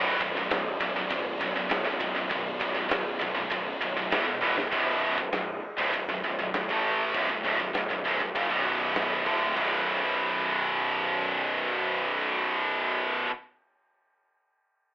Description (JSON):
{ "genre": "heavy metal", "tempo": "99 BPM", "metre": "4/4", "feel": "straight", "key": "B minor", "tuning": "A4 = 440 Hz", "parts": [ { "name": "heavy high-gain guitar", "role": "riff", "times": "0.0-13.3 s", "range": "B1 to A3", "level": "-28 LUFS", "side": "right 2 dB", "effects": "distortion" }, { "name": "scooped high-gain guitar", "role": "riff", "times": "0.0-13.3 s", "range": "B1 to A3", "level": "-30 LUFS", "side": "left 2 dB", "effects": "distortion" }, { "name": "thick fuzz guitar", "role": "riff", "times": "0.0-4.1 s", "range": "B1 to D4", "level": "-33 LUFS", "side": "equal", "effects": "distortion" }, { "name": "fuzz picked electric bass", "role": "bass", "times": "0.0-13.2 s", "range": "B0 to A1", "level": "-35 LUFS", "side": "equal", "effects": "overdrive" }, { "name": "big rock drum kit", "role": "drums", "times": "0.2-9.7 s", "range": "crash cymbal, kick drum, ride cymbal, snare drum", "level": "-34 LUFS", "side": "equal", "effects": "none" } ], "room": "moderate small room reverb, RT60 0.5 s", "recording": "telephone sound", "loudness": "-25 LUFS", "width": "side -19 dB against mid", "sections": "0.0-4.7 A section; 4.7-9.6 B section; 9.6-12.0 C section", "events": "drum fill 4.4-4.7", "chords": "0.0 Bm; 4.1 E5; 4.7 Bm; 9.6 B5" }